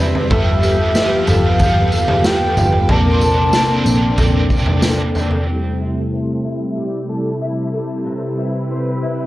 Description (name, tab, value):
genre	dream pop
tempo	93 BPM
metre	4/4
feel	straight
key	C major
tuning	A4 = 440 Hz
part	cranked stack guitar	accompaniment	0.0-6.0 s	G3 to D5	-23 LUFS	right 3 dB	overdrive, harmonic tremolo, wide subtle chorus
part	ensemble organ-string	sustained chords	0.0-9.3 s	C3 to B4	-20 LUFS	equal	ensemble chorus, low-pass filter
part	fingerpicked twelve-string acoustic guitar	arpeggios	0.0-9.3 s	A2 to D5	-24 LUFS	left 1 dB	ensemble chorus, low-pass filter, digital delay
part	vintage muted picked electric bass	bass	0.0-5.4 s	G1 to Bb1	-20 LUFS	equal	none
part	vibraphone with hard mallets	texture	0.0-5.8 s	B4 to E6	-30 LUFS	right 2 dB	digital delay
part	raw garage drum kit	drums	0.2-5.5 s	kick drum, snare drum, tambourine, toms	-17 LUFS	equal	none
part	hollow clarinet-like synth lead	melody	0.3-4.8 s	E5 to A5	-20 LUFS	equal	chorus, digital delay
room	light reverb, studio reverb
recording	worn, warbling old tape, cassette tape, warbly pitch drift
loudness	-14 LUFS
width	side -16 dB against mid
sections	0.0-5.5 A section; 5.5-9.3 B section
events	none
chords	0.3 G9; 2.9 Bbmaj9; 5.5 C6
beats	| 0.31 0.96 1.60 2.25 | 2.90 3.54 4.18 4.83 | 5.48 6.12 6.77 7.41 | 8.06 8.70